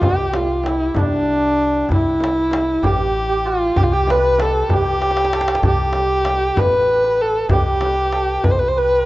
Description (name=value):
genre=Persian modal ensemble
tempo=64 BPM (dotted quarters)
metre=6/8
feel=straight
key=unclear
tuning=A4 = 440 Hz
part: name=warm kamancheh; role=melody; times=0.0-9.1 s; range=D4 to C5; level=-17 LUFS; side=equal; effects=none
part: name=santur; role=second line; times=0.0-9.1 s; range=D4 to C5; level=-25 LUFS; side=right 3 dB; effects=none
part: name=upright bass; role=bass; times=0.0-9.1 s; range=A1 to C2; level=-24 LUFS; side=equal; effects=none
part: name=frame drum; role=percussion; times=0.0-8.6 s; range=none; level=-27 LUFS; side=left 1 dB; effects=none
part: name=tombak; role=percussion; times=0.0-8.7 s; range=none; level=-21 LUFS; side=equal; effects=none
room=light reverb, small room ambience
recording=rough home demo mix, nothing above 7.8 kHz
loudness=-15 LUFS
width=side -18 dB against mid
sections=0.0-9.1 A section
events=drum fill 5.0-5.6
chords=none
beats=| 0.02 0.96 | 1.89 2.83 | 3.76 4.69 | 5.63 6.56 | 7.50 8.43